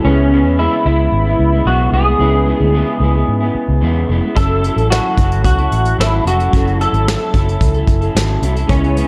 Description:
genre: indie pop, bedroom pop.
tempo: 111 BPM.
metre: 4/4.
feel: straight.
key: F# minor.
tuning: A4 = 439 Hz.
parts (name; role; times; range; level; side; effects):
electric guitar through a small old amp; melody; 0.0-9.1 s; C#4 to A4; -20 LUFS; equal; analog chorus, digital delay.
electric guitar through a small old amp; accompaniment; 0.0-9.1 s; C#3 to A4; -24 LUFS; equal; lush chorus, vibrato effect.
warm analog keys; accompaniment; 0.0-9.1 s; F#3 to B4; -25 LUFS; equal; chorus, cassette tape.
vintage muted fingered electric bass; bass; 0.0-9.0 s; E#1 to G#2; -18 LUFS; equal; none.
soft brush drum kit; drums; 4.4-9.1 s; hi-hat, kick drum, snare drum; -19 LUFS; equal; none.
room: light reverb, small room ambience.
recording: dark, warm production.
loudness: -14 LUFS.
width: mono.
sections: 0.0-9.1 A section.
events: none.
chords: 0.0 C#m7; 4.4 F#m7.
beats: | 0.04 0.58 1.12 1.66 | 2.20 2.74 3.28 3.82 | 4.36 4.90 5.44 5.98 | 6.53 7.07 7.61 8.15 | 8.69.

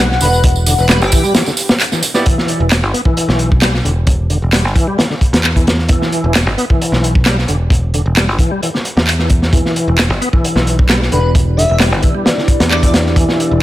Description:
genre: breakbeat, breaks.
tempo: 132 BPM.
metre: 4/4.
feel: straight.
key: E minor.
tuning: A4 = 440 Hz.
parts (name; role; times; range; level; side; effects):
dark analog pad; sustained chords; 0.0-2.2, 10.2-13.6 s; B3 to F#5; -21 LUFS; left 1 dB; chorus, phaser, sidechain pumping.
bright tonewheel organ; riff; 0.0-13.6 s; D3 to B3; -19 LUFS; equal; chorus vibrato, slow rotary speaker, tube saturation, vintage 12-bit sampler grit, tape echo.
picked electric bass; bass; 0.0-13.6 s; E1 to E2; -15 LUFS; equal; none.
crunchy breakbeat drum kit; drums; 0.1-13.5 s; hi-hat, kick drum, snare drum; -14 LUFS; equal; none.
airy dreamy lead; melody; 0.2-1.3, 11.1-12.9 s; G4 to E5; -19 LUFS; left 1 dB; chorus, old record sound, tape echo.
house drum kit; drums; 0.2-12.8 s; handclaps, hi-hat, tambourine; -18 LUFS; right 1 dB; none.
bright baby grand piano; stabs; 2.1-2.2 s; B3 to D5; -20 LUFS; right 2 dB; tape echo.
room: small room ambience.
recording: none.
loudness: -11 LUFS.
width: side -15 dB against mid.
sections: 0.0-2.3 A section; 2.3-13.6 B section.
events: drop 0.0-2.3; break 1.3-2.3.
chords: 0.0 Em7.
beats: | 0.44 0.89 1.35 1.80 | 2.25 2.71 3.16 3.62 | 4.07 4.53 4.98 5.44 | 5.89 6.35 6.80 7.25 | 7.71 8.16 8.62 9.07 | 9.53 9.98 10.44 10.89 | 11.35 11.80 12.26 12.71 | 13.16 13.62.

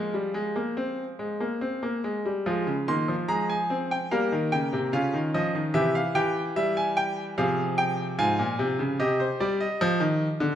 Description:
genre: classical, baroque-style 4-part fugue for grand piano.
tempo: 73 BPM.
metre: 4/4.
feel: straight.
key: F minor.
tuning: A4 = 440 Hz.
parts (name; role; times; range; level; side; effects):
bright grand piano; solo; 0.0-10.6 s; Ab2 to C6; -24 LUFS; equal; none.
room: wet recital hall reverb, RT60 1.7 s.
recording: none.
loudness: -24 LUFS.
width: side -10 dB against mid.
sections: 0.0-2.5 A section; 2.5-10.6 B section.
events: none.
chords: 0.0 Fm; 4.1 Gm7b5; 5.8 C; 7.4 Fm/C; 9.0 Cm.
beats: 0.77 1.61 | 2.46 3.28 4.11 4.93 | 5.75 6.57 7.38 8.19 | 9.00 9.81.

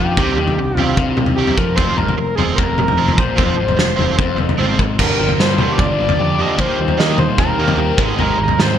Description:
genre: indie rock.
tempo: 150 BPM.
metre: 4/4.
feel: straight.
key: unclear.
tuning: A4 = 440 Hz.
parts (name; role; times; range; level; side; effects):
overdriven synth lead; melody; 0.0-8.8 s; G4 to Eb5; -20 LUFS; equal; distortion, chorus, digital delay.
airy breathy pad; sustained chords; 0.0-8.8 s; C3 to C5; -30 LUFS; right 2 dB; none.
overdriven electric guitar; riff; 0.0-8.8 s; F2 to G4; -22 LUFS; left 7 dB; spring reverb.
growling picked electric bass; bass; 0.0-8.8 s; F1 to Eb3; -22 LUFS; right 1 dB; overdrive.
crunchy overdriven guitar; riff; 0.2-8.8 s; G2 to C5; -22 LUFS; right 6 dB; ensemble chorus.
loose indie drum kit; drums; 0.2-8.7 s; crash cymbal, kick drum, snare drum, toms; -17 LUFS; equal; gated reverb.
room: light reverb.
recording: bright 1980s-style digital production.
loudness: -13 LUFS.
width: side -9 dB against mid.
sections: 0.0-5.0 A section; 5.0-8.8 B section.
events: drum fill 4.6-5.0.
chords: 0.0 Cmadd9; 1.8 F5; 5.0 Gm7; 6.6 Eb6; 8.0 Abmaj7.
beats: | 0.18 0.58 0.98 1.38 | 1.78 2.19 2.59 2.99 | 3.39 3.79 4.19 4.59 | 5.00 5.40 5.80 6.20 | 6.60 7.00 7.40 7.80 | 8.20 8.60.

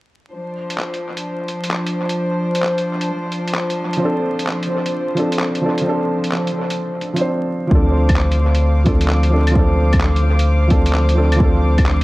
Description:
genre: future garage.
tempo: 130 BPM.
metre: 4/4.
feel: swing 66% on 16ths.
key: D minor.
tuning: A4 = 440 Hz.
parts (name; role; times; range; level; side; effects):
warm studio string section; sustained chords; 0.3-12.0 s; F3 to D6; -23 LUFS; left 1 dB; vintage 12-bit sampler grit, sidechain pumping.
lo-fi sampler-style drum kit; drums; 0.7-12.0 s; claves, handclaps, hi-hat; -25 LUFS; equal; overdrive, studio reverb, analog delay.
felt-muted upright piano; accompaniment; 4.0-12.0 s; F3 to C5; -20 LUFS; right 1 dB; sidechain pumping, tape echo.
warm sub bass; bass; 7.7-12.0 s; D2; -15 LUFS; equal; sidechain pumping.
electronic kick drum; drums; 7.7-11.8 s; none; -16 LUFS; equal; overdrive, studio reverb.
room: light reverb.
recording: echo-heavy mix, vinyl crackle.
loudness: -15 LUFS.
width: side -19 dB against mid.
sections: 0.3-7.7 A section; 7.7-12.0 B section.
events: none.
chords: 0.3 Dm7.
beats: | 0.33 0.79 1.25 1.71 | 2.17 2.63 3.10 3.56 | 4.02 4.48 4.94 5.40 | 5.87 6.33 6.79 7.25 | 7.71 8.17 8.63 9.10 | 9.56 10.02 10.48 10.94 | 11.40 11.87.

